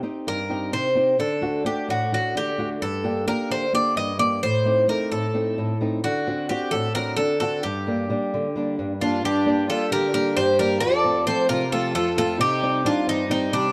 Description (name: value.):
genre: greek folk, Greek bouzouki band.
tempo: 262 BPM (eighths).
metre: 7/8.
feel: straight.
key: G harmonic minor, G minor from 9.2 s.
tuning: A4 = 440 Hz.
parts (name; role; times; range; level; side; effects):
flamenco guitar; accompaniment; 0.0-13.7 s; F2 to G4; -27 LUFS; equal; none.
Greek bouzouki; melody; 0.3-13.7 s; D4 to Eb5; -26 LUFS; equal; none.
dark violin; second line; 9.0-13.7 s; G3 to A4; -27 LUFS; equal; none.
room: moderate plate reverb, RT60 2.7 s.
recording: dark, warm production.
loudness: -23 LUFS.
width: mono.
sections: 0.0-9.2 A section; 9.2-13.7 B section.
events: speeding up 0.0-13.7.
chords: 0.0 Cm; 1.2 D; 2.8 Gm; 4.4 Adim; 6.0 D7; 7.6 Gm; 10.8 F; 12.4 Cm.